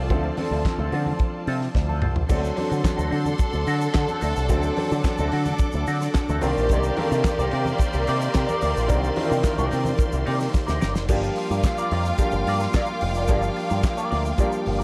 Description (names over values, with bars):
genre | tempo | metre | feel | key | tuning
disco | 109 BPM | 4/4 | straight | G minor | A4 = 440 Hz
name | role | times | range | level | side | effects
clean electric guitar | accompaniment | 0.0-14.8 s | C4 to D5 | -34 LUFS | equal | wah
clear baby grand piano | accompaniment | 0.0-14.8 s | Eb3 to Bb4 | -31 LUFS | equal | none
clear symphonic string section | sustained chords | 0.0-14.8 s | Bb3 to D6 | -35 LUFS | equal | none
picked electric bass with an envelope filter | bass | 0.0-14.8 s | F1 to D3 | -27 LUFS | equal | none
damped 70s drum kit | drums | 0.1-14.8 s | crash cymbal, handclaps, hi-hat, kick drum, snare drum, toms | -27 LUFS | equal | none
congas | percussion | 0.1-10.8 s | none | -37 LUFS | equal | none
warm studio violin section | second line | 2.3-14.8 s | Bb3 to F5 | -31 LUFS | equal | none
tube shaker | percussion | 2.3-14.8 s | none | -48 LUFS | equal | none
room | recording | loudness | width
light reverb, small room ambience | dark, warm production | -23 LUFS | mono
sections
0.0-2.3 A section; 2.3-11.1 B section; 11.1-14.8 C section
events
drum fill 1.8-2.3, 10.5-11.1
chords
0.0 Dm7; 2.3 D7; 6.4 Cm9; 11.1 Gm7